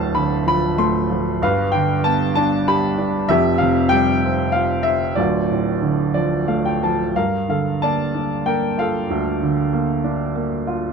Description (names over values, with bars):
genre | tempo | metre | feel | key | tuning
classical, lyrical solo piano | 94 BPM | 3/4 | rubato | D dorian, G minor from 7.2 s | A4 = 440 Hz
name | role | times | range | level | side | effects
warm baby grand piano | solo | 0.0-10.9 s | D1 to C6 | -17 LUFS | equal | none
room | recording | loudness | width
light reverb | close, detailed microphones | -17 LUFS | side -5 dB against mid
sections
0.0-7.2 A section; 7.2-10.9 B section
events
grand piano fill 5.8-7.2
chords
0.0 Dm7; 1.4 G; 3.3 Fsus2; 5.2 Dm; 7.2 Gm7